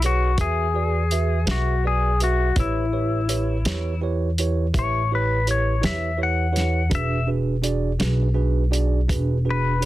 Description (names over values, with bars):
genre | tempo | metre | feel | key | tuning
slow blues | 55 BPM (dotted quarters) | 12/8 | straight | E mixolydian | A4 = 440 Hz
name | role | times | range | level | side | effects
clean lap steel guitar | melody | 0.0-9.8 s | E4 to F#5 | -24 LUFS | left 5 dB | none
tine electric piano | accompaniment | 0.0-9.9 s | D4 to E5 | -28 LUFS | right 6 dB | none
upright bass | bass | 0.0-9.9 s | E1 to E2 | -22 LUFS | equal | none
warm soul drum kit | drums | 0.0-9.9 s | hi-hat, kick drum, snare drum | -25 LUFS | equal | none
room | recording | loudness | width
light reverb | dense, heavily limited modern master | -20 LUFS | side -15 dB against mid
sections
0.0-9.9 A section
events
none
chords
0.0 E7; 2.6 A7; 6.9 E7